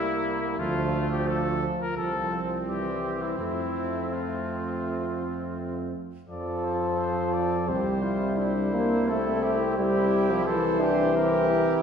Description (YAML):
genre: classical, brass quintet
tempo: 86 BPM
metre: 4/4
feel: rubato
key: F major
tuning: A4 = 440 Hz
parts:
  - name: clear cornet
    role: melody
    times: 0.0-11.8 s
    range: E4 to D5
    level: -32 LUFS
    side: left 3 dB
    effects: none
  - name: warm trumpet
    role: second line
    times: 0.0-11.8 s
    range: A3 to A4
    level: -33 LUFS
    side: right 2 dB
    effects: none
  - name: clear trombone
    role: accompaniment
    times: 0.0-11.8 s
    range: F3 to E4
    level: -32 LUFS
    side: right 2 dB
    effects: none
  - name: warm French horn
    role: accompaniment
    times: 0.0-11.8 s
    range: E3 to Bb3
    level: -28 LUFS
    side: left 2 dB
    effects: none
  - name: warm bass trombone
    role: bass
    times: 0.0-11.8 s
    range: C2 to F2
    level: -32 LUFS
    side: right 2 dB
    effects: none
room: wet recital hall reverb, RT60 1.5 s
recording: recorded in a church or concert hall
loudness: -24 LUFS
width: side -7 dB against mid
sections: 0.0-6.3 A section; 6.3-11.8 A section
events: none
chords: 0.0 C7; 0.6 Dm; 2.0 F/C; 2.7 C; 3.4 F; 7.7 C; 9.1 C7